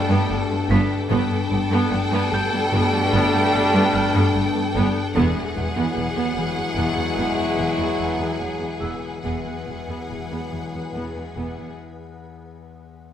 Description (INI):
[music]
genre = cinematic, suspense film score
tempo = 70-75 BPM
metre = 5/4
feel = straight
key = unclear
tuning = A4 = 437 Hz
[part]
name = warm studio violin section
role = melody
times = 0.0-11.7 s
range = F#5 to G5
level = -29 LUFS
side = equal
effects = none
[part]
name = warm studio violin section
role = second line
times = 0.0-11.7 s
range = G#4 to A4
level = -29 LUFS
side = left 1 dB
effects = none
[part]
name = mellow French horn section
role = sustained chords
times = 0.0-11.8 s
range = G#3 to E4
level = -28 LUFS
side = left 2 dB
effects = none
[part]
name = soft additive organ-like pad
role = sustained chords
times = 0.0-11.8 s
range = G#4 to F#5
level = -36 LUFS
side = left 2 dB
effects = ensemble chorus, built-in reverb
[part]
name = warm trombone section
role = sustained chords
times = 0.0-11.7 s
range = B2 to G3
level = -31 LUFS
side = right 3 dB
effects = none
[part]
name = concert harp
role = riff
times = 0.0-13.1 s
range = E2 to A3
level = -28 LUFS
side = left 6 dB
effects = none
[part]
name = dark studio viola section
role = accompaniment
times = 0.1-11.7 s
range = B3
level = -28 LUFS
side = right 3 dB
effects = none
[part]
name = warm studio cello section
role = bass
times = 0.1-11.7 s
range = E2 to G2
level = -27 LUFS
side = right 2 dB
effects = none
[part]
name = warm studio double bass section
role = bass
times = 0.3-11.4 s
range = E1 to G1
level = -27 LUFS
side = right 2 dB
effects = none
[part]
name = warm concert grand piano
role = texture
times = 0.7-13.1 s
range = D5 to B6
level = -36 LUFS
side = left 1 dB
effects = none
[sound]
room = moderate scoring stage reverb, RT60 1.7 s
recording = none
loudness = -19 LUFS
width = side -9 dB against mid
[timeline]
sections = 0.0-13.1 A section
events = break 11.8-13.1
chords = 0.0 Gadd9; 5.2 Eadd9